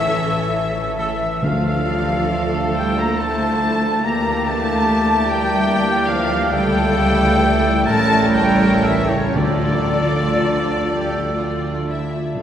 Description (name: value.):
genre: classical, slow romantic movement for symphony orchestra.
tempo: 38-50 BPM (dotted quarters).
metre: 6/8.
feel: rubato.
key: D minor.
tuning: A4 = 440 Hz.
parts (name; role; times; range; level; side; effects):
rich studio violin section; melody; 0.0-12.4 s; C#5 to Bb5; -26 LUFS; left 3 dB; none.
large flute ensemble; second line; 0.0-11.9 s; C#5 to Bb5; -25 LUFS; equal; none.
rich studio violin section; second line; 0.0-12.4 s; E4 to D5; -29 LUFS; left 2 dB; none.
warm oboe; second line; 0.0-11.9 s; C#5 to Bb5; -26 LUFS; right 1 dB; none.
rich studio viola section; accompaniment; 0.0-12.4 s; G3 to A4; -25 LUFS; equal; none.
mellow French horn section; sustained chords; 0.0-12.4 s; C#3 to A4; -26 LUFS; left 2 dB; none.
concert harp; arpeggios; 0.0-12.4 s; A2 to A5; -30 LUFS; left 4 dB; none.
rich studio cello section; bass; 0.0-12.4 s; C#3 to Bb3; -25 LUFS; right 1 dB; none.
rich studio double bass section; bass; 0.0-12.4 s; A1 to D2; -27 LUFS; right 2 dB; none.
timpani; percussion; 0.0-2.7, 9.4-12.4 s; D3; -29 LUFS; right 1 dB; none.
warm trombone section; sustained chords; 1.0-12.0 s; C#3 to D4; -27 LUFS; right 2 dB; none.
warm trumpet; stabs; 1.0-12.0 s; G4 to Bb4; -26 LUFS; right 1 dB; none.
room: wet cathedral reverb, RT60 6.0 s.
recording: recorded in a church or concert hall.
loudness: -16 LUFS.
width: side -9 dB against mid.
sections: 0.0-12.4 A section.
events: none.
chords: 0.0 A; 1.4 Dm; 6.5 A7/C#; 7.9 A7b9; 9.4 Dm.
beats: 0.08 | 1.43 2.76 | 4.05 5.29 | 6.52 7.87 | 9.36 10.89 | 12.36.